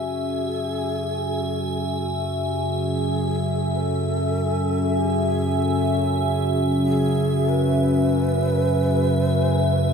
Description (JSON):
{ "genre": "dark ambient drone", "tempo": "free time", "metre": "none", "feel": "none", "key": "F# minor", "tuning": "A4 = 440 Hz", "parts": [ { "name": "breathy mellow long shakuhachi", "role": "melody", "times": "0.0-9.9 s", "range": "G#4 to B4", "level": "-29 LUFS", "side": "right 1 dB", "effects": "ping-pong delay" }, { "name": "dark analog pad", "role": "sustained chords", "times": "0.0-9.9 s", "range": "C#4 to G#5", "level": "-27 LUFS", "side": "right 1 dB", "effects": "wide subtle chorus" }, { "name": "analog drone", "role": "drone", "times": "0.0-9.9 s", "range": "F#2 to C#3", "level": "-22 LUFS", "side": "equal", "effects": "chorus" }, { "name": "icy glass pad", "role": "texture", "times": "0.0-9.9 s", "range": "E5", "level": "-28 LUFS", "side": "left 1 dB", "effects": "chorus, built-in reverb" } ], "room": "wet cathedral reverb, RT60 5.6 s", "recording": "in a vast, echoing space", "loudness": "-20 LUFS", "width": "side -6 dB against mid", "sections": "0.0-9.9 A section", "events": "fade-in on synth drone 0.0-9.9; fade-in on shakuhachi 0.0-9.9; fade-out on analog synth pad 0.0-9.9", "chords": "0.0 F#sus2" }